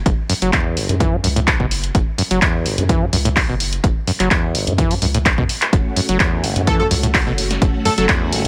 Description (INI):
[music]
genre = acid house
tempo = 127 BPM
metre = 4/4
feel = straight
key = F# minor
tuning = A4 = 440 Hz
[part]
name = overdriven acid bass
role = riff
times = 0.1-8.5 s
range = F#1 to F#3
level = -23 LUFS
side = equal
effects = tube saturation, cassette tape, sidechain pumping, tape echo
[part]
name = round analog bass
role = bass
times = 0.1-8.5 s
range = F#1 to F#2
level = -24 LUFS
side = equal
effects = sidechain pumping
[part]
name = electronic kick drum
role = drums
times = 0.1-8.2 s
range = none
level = -20 LUFS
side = equal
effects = none
[part]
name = punchy analog drum machine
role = drums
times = 0.1-8.5 s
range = handclaps, hi-hat, snare drum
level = -22 LUFS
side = equal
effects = none
[part]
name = string machine, full ensemble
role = sustained chords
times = 5.7-8.5 s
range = A3 to F#4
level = -28 LUFS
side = equal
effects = phaser, ensemble chorus, sidechain pumping
[part]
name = plucky unison lead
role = melody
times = 6.7-8.1 s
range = A4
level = -24 LUFS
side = equal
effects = digital delay
[sound]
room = light reverb, digital ambience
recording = none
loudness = -17 LUFS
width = mono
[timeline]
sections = 0.0-8.5 A section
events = drum fill 5.3-5.7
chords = 0.0 F#m